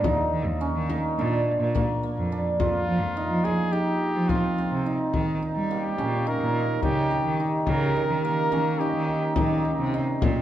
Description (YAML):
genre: contemporary instrumental, chamber music in an uneven meter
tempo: 212 BPM (eighths)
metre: 9/8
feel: straight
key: unclear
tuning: A4 = 445 Hz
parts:
  - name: hammered dulcimer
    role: arpeggios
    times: 0.0-10.4 s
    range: Bb3 to G4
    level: -27 LUFS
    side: right 1 dB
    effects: none
  - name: rich cello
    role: bass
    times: 0.0-10.4 s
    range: Eb2 to G3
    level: -27 LUFS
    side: right 2 dB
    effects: none
  - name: frame drum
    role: percussion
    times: 0.0-10.4 s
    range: none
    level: -30 LUFS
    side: left 4 dB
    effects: none
  - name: clear flugelhorn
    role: melody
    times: 2.6-10.0 s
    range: F4 to Bb4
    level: -29 LUFS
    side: right 1 dB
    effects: none
  - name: warbly tape-like pad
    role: sustained chords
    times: 5.1-10.4 s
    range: Eb3 to G4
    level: -33 LUFS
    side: left 3 dB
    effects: chorus, built-in reverb
room: wet recital hall reverb, RT60 1.7 s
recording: dark, warm production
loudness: -22 LUFS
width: side -11 dB against mid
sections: 0.0-5.1 A section; 5.1-10.4 B section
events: none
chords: 0.1 Dbsus2/Eb; 1.2 Bb; 2.6 F5; 5.1 Eb7